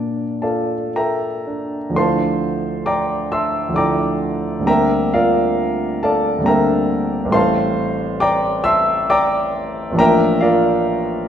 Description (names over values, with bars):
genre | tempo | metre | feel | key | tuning
classical, impressionist solo piano | 67 BPM | 3/4 | uneven beats, rubato | unclear | A4 = 439 Hz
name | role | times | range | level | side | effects
warm grand piano | solo | 0.0-11.3 s | A1 to E6 | -16 LUFS | equal | none
room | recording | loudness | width
wet recital hall reverb, RT60 1.4 s | heard from further back in the room, nothing above 10.6 kHz | -15 LUFS | side -9 dB against mid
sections
0.0-1.9 A section; 1.9-11.3 B section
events
none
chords
0.0 Bbmaj7; 1.9 Bb69/D; 10.0 Bbmaj7/A